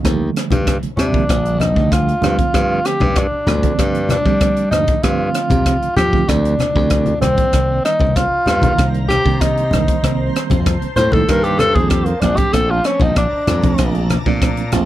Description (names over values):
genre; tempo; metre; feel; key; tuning
electric jazz fusion; 96 BPM; 4/4; straight; unclear; A4 = 441 Hz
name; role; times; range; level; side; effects
bright reed electric piano; accompaniment; 0.0-14.9 s; D3 to D5; -22 LUFS; right 8 dB; fast tremolo
glassy slap bass; bass; 0.0-14.9 s; Bb1 to G3; -18 LUFS; equal; none
crisp fusion drum kit; drums; 0.0-14.9 s; hi-hat, kick drum, rim click; -19 LUFS; equal; none
congas; percussion; 0.5-14.9 s; none; -23 LUFS; left 2 dB; none
warm tenor saxophone; melody; 1.0-14.1 s; Bb3 to C5; -18 LUFS; equal; none
granular cloud pad; sustained chords; 8.7-14.9 s; C5 to D6; -30 LUFS; equal; built-in reverb
room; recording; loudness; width
little or no reverb; none; -13 LUFS; side -14 dB against mid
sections
0.0-14.9 A section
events
tenor saxophone solo 0.0-14.9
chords
0.0 Ebmaj9; 2.2 G7sus4; 7.2 Cm7; 12.2 Bbmaj7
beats
| 0.04 0.67 1.29 1.92 | 2.54 3.16 3.79 4.41 | 5.04 5.66 6.29 6.91 | 7.54 8.16 8.79 9.41 | 10.04 10.66 11.29 11.91 | 12.54 13.16 13.79 14.42